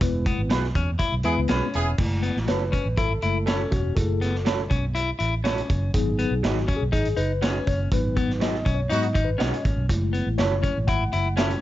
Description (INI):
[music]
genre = uptempo 1960s-style soul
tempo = 122 BPM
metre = 4/4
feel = straight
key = F# dorian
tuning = A4 = 445 Hz
[part]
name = mellow tine electric piano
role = accompaniment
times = 0.0-11.6 s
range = F#3 to F#5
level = -28 LUFS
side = left 3 dB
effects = medium stereo tremolo
[part]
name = vintage muted fingered electric bass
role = bass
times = 0.0-11.5 s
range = E1 to G#2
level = -26 LUFS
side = right 1 dB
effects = none
[part]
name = vintage drum kit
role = drums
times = 0.0-11.6 s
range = crash cymbal, hi-hat, kick drum, snare drum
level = -26 LUFS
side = equal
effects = none
[part]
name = semi-hollow electric guitar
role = riff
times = 0.3-11.6 s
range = B3 to E4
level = -28 LUFS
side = left 4 dB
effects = none
[part]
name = electric guitar through a small old amp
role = stabs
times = 0.5-11.5 s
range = F#3 to B4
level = -29 LUFS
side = right 9 dB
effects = none
[part]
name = clear horn section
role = second line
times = 1.2-1.9, 8.9-9.1 s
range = B3 to G#4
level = -28 LUFS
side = right 2 dB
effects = none
[sound]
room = light reverb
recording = nothing above 7.7 kHz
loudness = -21 LUFS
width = side -14 dB against mid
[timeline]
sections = 0.0-2.0 A section; 2.0-11.6 B section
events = band accent 0.0-2.0, 7.9-9.9; tine electric piano solo 2.0-11.6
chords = 0.0 E; 2.0 F#m7; 5.9 G#m7; 9.9 F#m7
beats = | 0.02 0.51 1.01 1.50 | 1.99 2.49 2.98 3.47 | 3.97 4.46 4.96 5.45 | 5.94 6.44 6.93 7.43 | 7.92 8.41 8.91 9.40 | 9.90 10.39 10.88 11.38